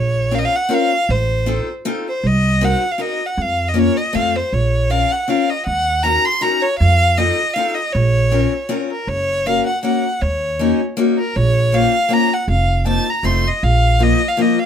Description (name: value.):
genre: musette waltz.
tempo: 158 BPM.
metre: 3/4.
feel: swing 54% on 8ths.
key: Bb harmonic minor.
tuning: A4 = 440 Hz.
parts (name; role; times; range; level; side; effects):
clear violin; melody; 0.0-14.7 s; Bb4 to C6; -18 LUFS; equal; none.
upright bass; bass; 0.0-14.1 s; F1 to F2; -17 LUFS; right 2 dB; none.
picked steel-string acoustic guitar; accompaniment; 0.3-14.6 s; F3 to Bb4; -19 LUFS; left 4 dB; none.
room: light reverb.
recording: minimal, uncompressed stereo recording.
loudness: -14 LUFS.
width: side -8 dB against mid.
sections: 0.0-14.7 A section.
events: none.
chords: 0.0 Bbmadd9; 1.1 F7/A; 2.2 Cm7b5; 3.4 Bbm/F; 4.1 F; 4.5 Bbmadd9; 5.7 Ebm7; 6.8 F7; 7.9 Bbmadd9; 9.1 Gb; 10.2 Ebm7; 11.3 Bbmadd9; 12.5 F7sus4; 13.2 F7; 13.6 Bbsus2.